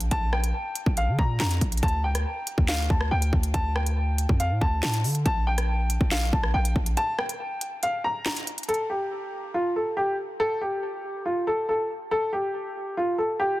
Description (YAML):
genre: hip hop, drill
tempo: 140 BPM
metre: 4/4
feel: half-time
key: unclear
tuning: A4 = 440 Hz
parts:
  - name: hard-hitting 808-style bass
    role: bass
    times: 0.0-7.0 s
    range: Bb1 to D3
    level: -25 LUFS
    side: equal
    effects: none
  - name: drill drum kit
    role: drums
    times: 0.0-8.8 s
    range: handclaps, hi-hat, kick drum, rim click, snare drum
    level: -27 LUFS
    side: equal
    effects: none
  - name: warm upright piano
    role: melody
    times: 0.1-13.6 s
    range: F4 to Bb5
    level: -27 LUFS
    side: equal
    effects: tape echo
room: little or no reverb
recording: dense, heavily limited modern master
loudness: -23 LUFS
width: side -17 dB against mid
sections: 0.0-8.7 A section; 8.7-13.6 B section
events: break 7.0-8.7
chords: 0.0 N.C.; 1.8 D5; 5.3 Gm/Bb; 8.7 N.C.